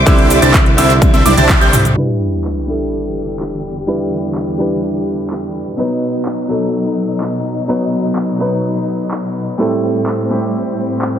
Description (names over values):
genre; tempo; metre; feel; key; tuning
EDM, festival progressive house; 126 BPM; 4/4; straight; E minor; A4 = 441 Hz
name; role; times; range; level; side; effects
bright concert grand piano; accompaniment; 0.0-11.2 s; A2 to B4; -17 LUFS; right 1 dB; sidechain pumping, ping-pong delay
warm symphonic string section; sustained chords; 0.0-11.2 s; E2 to D6; -22 LUFS; left 1 dB; sidechain pumping, low-pass filter
fat analog bass; bass; 0.0-1.9 s; C2; -15 LUFS; equal; sidechain pumping
clear grand piano; arpeggios; 0.1-1.8 s; D6 to A6; -18 LUFS; right 3 dB; sidechain pumping, ping-pong delay
big supersaw lead; riff; 0.1-1.8 s; D4 to A5; -16 LUFS; right 1 dB; phaser, sidechain pumping, low-pass filter, ping-pong delay
big-room dance drum kit; drums; 0.1-11.1 s; cabasa, crash cymbal, handclaps, hi-hat, toms; -19 LUFS; equal; none
electronic kick drum; drums; 0.1-1.6 s; none; -11 LUFS; equal; none
sub drop; sound effects; 2.0-3.9 s; none; -21 LUFS; equal; none
room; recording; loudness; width
light reverb; low-pass filter; -13 LUFS; side -9 dB against mid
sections
0.0-2.0 A section; 2.0-11.2 B section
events
drop 0.0-2.0; drum fill 1.0-2.0; band accent 1.5; impact 2.0-3.9; filter sweep on string section 2.0-11.2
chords
0.0 Cadd9; 2.0 Em7; 5.8 B; 9.6 Am7